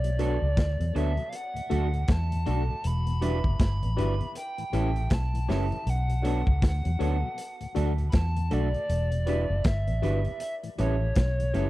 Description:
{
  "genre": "lovers rock reggae",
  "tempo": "79 BPM",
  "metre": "4/4",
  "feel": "swing 60% on 16ths",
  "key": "E dorian",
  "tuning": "A4 = 440 Hz",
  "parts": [
    { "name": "reedy FM lead", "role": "melody", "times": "0.0-11.7 s", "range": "C#5 to B5", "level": "-34 LUFS", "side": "equal", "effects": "chorus, tape echo" },
    { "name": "mellow tonewheel organ", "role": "accompaniment", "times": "0.0-11.6 s", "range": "D2 to D4", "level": "-38 LUFS", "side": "left 6 dB", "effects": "slow rotary speaker, slapback echo" },
    { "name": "vintage muted fingered electric bass", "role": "bass", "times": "0.0-11.7 s", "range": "E1 to E2", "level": "-26 LUFS", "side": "equal", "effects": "none" },
    { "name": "crunchy breakbeat drum kit", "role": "drums", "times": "0.0-11.7 s", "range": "hi-hat, kick drum, snare drum", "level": "-26 LUFS", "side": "equal", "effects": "none" },
    { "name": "tine electric piano", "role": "accompaniment", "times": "0.2-11.7 s", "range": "D4 to D5", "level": "-34 LUFS", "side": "left 5 dB", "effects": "overdrive, fast stereo tremolo" },
    { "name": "electric guitar through a small old amp", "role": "stabs", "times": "0.2-11.7 s", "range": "F#3 to B4", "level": "-35 LUFS", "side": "right 6 dB", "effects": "spring reverb" }
  ],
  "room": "little or no reverb",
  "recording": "dry, close 1970s-style studio recording",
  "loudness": "-24 LUFS",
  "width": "side -17 dB against mid",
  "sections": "0.0-11.7 A section",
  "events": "none",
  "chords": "0.0 Bm7; 1.3 D; 2.8 Em7; 4.4 A7; 5.9 Bm7; 7.4 D; 8.9 Em7; 10.4 A7"
}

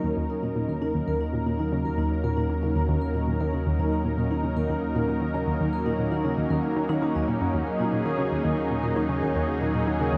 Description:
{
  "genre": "ambient",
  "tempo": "116 BPM",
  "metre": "4/4",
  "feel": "straight",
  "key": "Eb minor",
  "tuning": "A4 = 440 Hz",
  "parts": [
    { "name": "lush unison pad", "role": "sustained chords", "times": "0.0-10.2 s", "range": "Gb3 to Bb4", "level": "-29 LUFS", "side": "equal", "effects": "chorus" },
    { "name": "vibraphone with soft mallets", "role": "arpeggios", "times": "0.0-10.2 s", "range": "Bb3 to Bb4", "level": "-36 LUFS", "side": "equal", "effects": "analog delay" },
    { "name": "analog pluck", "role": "riff", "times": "0.0-10.2 s", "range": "Eb2 to Eb3", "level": "-31 LUFS", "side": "equal", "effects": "chorus, analog delay" },
    { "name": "analog drone", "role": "bass", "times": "0.6-10.2 s", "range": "Eb2", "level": "-34 LUFS", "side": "equal", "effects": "chorus" }
  ],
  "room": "moderate plate reverb, RT60 2.9 s",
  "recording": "dreamy mix soaked in reverb",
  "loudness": "-26 LUFS",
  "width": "mono",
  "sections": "0.0-10.2 A section",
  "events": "none",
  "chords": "0.0 Ebm7"
}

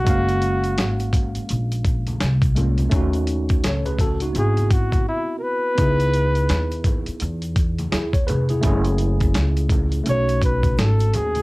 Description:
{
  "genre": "hip hop, jazz-hop",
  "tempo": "84 BPM",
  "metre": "4/4",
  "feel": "swing 60% on 16ths",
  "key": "C# minor",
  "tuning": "A4 = 441 Hz",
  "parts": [
    { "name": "breathy flugelhorn", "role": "melody", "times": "0.0-11.4 s", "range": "E4 to C#5", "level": "-23 LUFS", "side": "equal", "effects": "cassette tape" },
    { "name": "tine electric piano", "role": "accompaniment", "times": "0.0-11.4 s", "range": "G#3 to E#5", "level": "-26 LUFS", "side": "right 1 dB", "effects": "overdrive, fast stereo tremolo, cassette tape" },
    { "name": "upright bass", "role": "bass", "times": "0.0-11.4 s", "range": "E#1 to E2", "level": "-21 LUFS", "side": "equal", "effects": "none" },
    { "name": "dusty soul sampler-style drum kit", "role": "drums", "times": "0.1-11.4 s", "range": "hi-hat, kick drum, snare drum", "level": "-22 LUFS", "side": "equal", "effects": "cassette tape" },
    { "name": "tube shaker and congas", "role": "percussion", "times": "0.1-11.4 s", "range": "none", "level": "-34 LUFS", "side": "left 1 dB", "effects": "none" }
  ],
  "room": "light reverb",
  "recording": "home recording on cassette",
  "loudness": "-18 LUFS",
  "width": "side -22 dB against mid",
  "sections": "0.0-11.4 A section",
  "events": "flugelhorn solo 0.0-11.4; break 5.1-5.8",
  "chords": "0.1 F#maj9; 2.9 D#m7b5; 4.4 G#7alt; 5.8 C#m9; 8.6 F#m9; 10.1 B9"
}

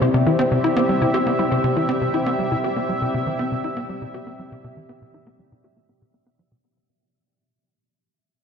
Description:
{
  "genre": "ambient, sequencer-driven space music",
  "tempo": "120 BPM",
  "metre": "4/4",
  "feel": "straight",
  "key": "unclear",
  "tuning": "A4 = 437 Hz",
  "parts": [
    { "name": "sweeping resonant pad", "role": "sustained chords", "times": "0.0-6.6 s", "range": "C4 to E5", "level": "-23 LUFS", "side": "equal", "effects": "chorus" },
    { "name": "wide unison pluck", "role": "arpeggios", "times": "0.0-2.6 s", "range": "E4 to C5", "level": "-26 LUFS", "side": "left 3 dB", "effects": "auto-pan, ping-pong delay" },
    { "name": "tight sequencer bass", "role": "riff", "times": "0.0-6.6 s", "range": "C3 to G4", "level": "-23 LUFS", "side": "equal", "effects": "lush chorus, ping-pong delay" }
  ],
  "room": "wet cathedral reverb, RT60 6.3 s",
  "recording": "in a vast, echoing space",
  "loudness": "-18 LUFS",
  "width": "side -6 dB against mid",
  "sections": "0.0-6.6 A section",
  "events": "fade-out 0.0-6.6; filter sweep on analog synth bass 0.0-6.6",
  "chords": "0.0 C"
}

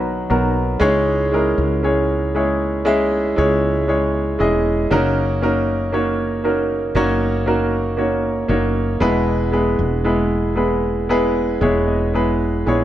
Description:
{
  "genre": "pop ballad",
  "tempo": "58 BPM",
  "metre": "4/4",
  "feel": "straight",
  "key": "unclear",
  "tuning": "A4 = 440 Hz",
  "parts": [
    { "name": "warm grand piano", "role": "accompaniment", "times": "0.0-12.8 s", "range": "G#2 to G#5", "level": "-17 LUFS", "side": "equal", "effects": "none" },
    { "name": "woody fretless electric bass", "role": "bass", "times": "0.0-12.8 s", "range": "E1 to C#2", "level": "-22 LUFS", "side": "left 1 dB", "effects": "wide subtle chorus" }
  ],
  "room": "light reverb, small room ambience",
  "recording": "none",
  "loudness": "-16 LUFS",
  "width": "side -12 dB against mid",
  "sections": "0.0-12.8 A section",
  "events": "grand piano fill 11.1-12.8",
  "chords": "0.0 B; 0.8 C#m; 4.9 F#6; 9.0 E"
}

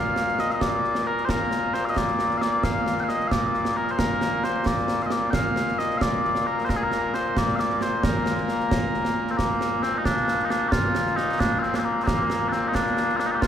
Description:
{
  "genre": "scottish traditional, Scottish pipe music",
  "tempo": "89 BPM (dotted quarters)",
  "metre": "6/8",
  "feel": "straight",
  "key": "Bb major",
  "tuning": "A4 = 440 Hz",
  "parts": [
    { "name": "mellow small bagpipes", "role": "melody", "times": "0.0-13.5 s", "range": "Bb2 to G5", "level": "-23 LUFS", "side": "left 1 dB", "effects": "none" },
    { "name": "concert snare drum and concert bass drum", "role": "drums", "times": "0.2-13.5 s", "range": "none", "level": "-26 LUFS", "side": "right 1 dB", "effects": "none" }
  ],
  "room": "wet cathedral reverb, RT60 4.7 s",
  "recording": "recorded in a church or concert hall",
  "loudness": "-21 LUFS",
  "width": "side -9 dB against mid",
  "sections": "0.0-9.4 A section; 9.4-13.5 A section",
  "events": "none",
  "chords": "none"
}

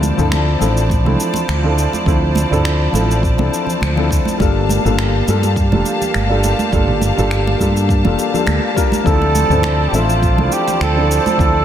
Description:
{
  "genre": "sunset chillout",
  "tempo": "103 BPM",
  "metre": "4/4",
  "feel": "swing 54% on 16ths",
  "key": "D minor",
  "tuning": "A4 = 441 Hz",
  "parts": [
    { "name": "warm baby grand piano", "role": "accompaniment", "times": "0.0-11.6 s", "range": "F3 to E5", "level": "-19 LUFS", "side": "moving between left 6 dB and right 4 dB", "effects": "auto-pan, analog delay" },
    { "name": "warm studio string section", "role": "sustained chords", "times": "0.0-11.6 s", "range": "F3 to A5", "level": "-22 LUFS", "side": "equal", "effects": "none" },
    { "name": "mellow fretless electric bass", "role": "bass", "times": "0.0-11.6 s", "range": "F1 to G2", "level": "-17 LUFS", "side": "equal", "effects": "none" },
    { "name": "deep house drum kit", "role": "drums", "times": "0.0-11.5 s", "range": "cabasa, finger snaps, toms", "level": "-25 LUFS", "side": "right 1 dB", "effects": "none" },
    { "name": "congas", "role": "percussion", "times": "0.0-11.4 s", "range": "none", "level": "-24 LUFS", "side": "right 5 dB", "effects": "none" },
    { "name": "electronic kick drum", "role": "drums", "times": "0.9-11.5 s", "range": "none", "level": "-18 LUFS", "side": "equal", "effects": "none" },
    { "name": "trumpet with bucket mute", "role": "melody", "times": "9.1-11.6 s", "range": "F4 to A4", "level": "-18 LUFS", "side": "right 2 dB", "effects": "ping-pong delay" }
  ],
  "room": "moderate plate reverb, RT60 2.9 s",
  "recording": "dreamy mix soaked in reverb",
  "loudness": "-13 LUFS",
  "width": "side -10 dB against mid",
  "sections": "0.0-11.6 A section",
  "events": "none",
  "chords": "0.0 Dm7; 4.4 Gm9; 9.1 Dm7"
}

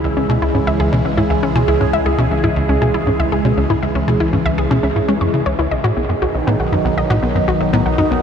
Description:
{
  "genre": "ambient, sequencer-driven space music",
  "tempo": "119 BPM",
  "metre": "4/4",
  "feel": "straight",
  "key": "C# minor",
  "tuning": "A4 = 440 Hz",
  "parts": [
    { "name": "phased analog pad", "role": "sustained chords", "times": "0.0-8.2 s", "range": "B2 to G#4", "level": "-18 LUFS", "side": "right 1 dB", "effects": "phaser, chorus" },
    { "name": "wide unison pluck", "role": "arpeggios", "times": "0.0-8.2 s", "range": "B3 to C#6", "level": "-20 LUFS", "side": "left 3 dB", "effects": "auto-pan, tape echo" },
    { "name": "tight sequencer bass", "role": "riff", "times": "0.0-8.2 s", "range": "B1 to G#3", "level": "-18 LUFS", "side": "equal", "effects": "lush chorus, tape echo" },
    { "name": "warm sub bass", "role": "bass", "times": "0.0-8.2 s", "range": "B1 to C#2", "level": "-25 LUFS", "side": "equal", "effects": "none" }
  ],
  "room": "moderate huge ambient reverb, RT60 7.3 s",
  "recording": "none",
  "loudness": "-14 LUFS",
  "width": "side -7 dB against mid",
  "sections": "0.0-8.2 A section",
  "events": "none",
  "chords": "0.0 C#m; 5.7 B"
}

